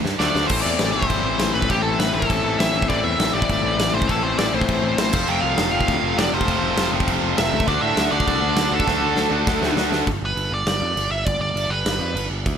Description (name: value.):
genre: punk rock.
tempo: 201 BPM.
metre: 4/4.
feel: straight.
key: A minor.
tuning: A4 = 440 Hz.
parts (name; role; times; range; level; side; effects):
overdriven electric guitar; riff; 0.0-10.1 s; A2 to F#4; -24 LUFS; left 12 dB; none.
scooped high-gain guitar; riff; 0.0-10.1 s; F2 to D4; -29 LUFS; right 1 dB; none.
tight distorted guitar; riff; 0.0-0.5, 5.3-10.1 s; F2 to D4; -25 LUFS; right 17 dB; distortion.
modern bright picked electric bass; bass; 0.0-12.6 s; F1 to A2; -26 LUFS; right 1 dB; none.
big rock drum kit; drums; 0.1-12.5 s; crash cymbal, kick drum, snare drum; -24 LUFS; equal; none.
nasal lead guitar with a parked wah; melody; 0.2-12.3 s; G4 to G5; -23 LUFS; right 1 dB; overdrive, ping-pong delay.
room: little or no reverb.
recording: none.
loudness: -18 LUFS.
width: side -8 dB against mid.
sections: 0.5-10.1 A section; 10.1-12.6 B section.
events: drum fill 0.0-0.5, 8.9-10.1; half time 10.1-12.6.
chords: 0.0 Dm; 0.5 Am; 5.1 F; 7.7 D; 10.1 G.